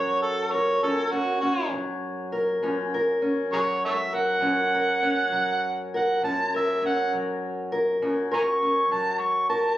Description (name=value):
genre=acoustic country blues, solo or duo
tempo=67 BPM (dotted quarters)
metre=12/8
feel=straight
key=F# major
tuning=A4 = 440 Hz
part: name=overdriven harmonica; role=melody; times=0.0-9.8 s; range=F#4 to C#6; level=-24 LUFS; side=right 2 dB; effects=none
part: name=fingerpicked steel-string acoustic guitar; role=accompaniment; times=0.0-9.8 s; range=F#2 to A#4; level=-25 LUFS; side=left 1 dB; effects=none
room=light reverb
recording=recorded on a phone in the room, club reverb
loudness=-22 LUFS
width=side -14 dB against mid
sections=0.0-9.8 A section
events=none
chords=0.0 F#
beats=0.84 1.74 | 2.64 3.54 4.43 5.33 | 6.23 7.12 8.02 8.91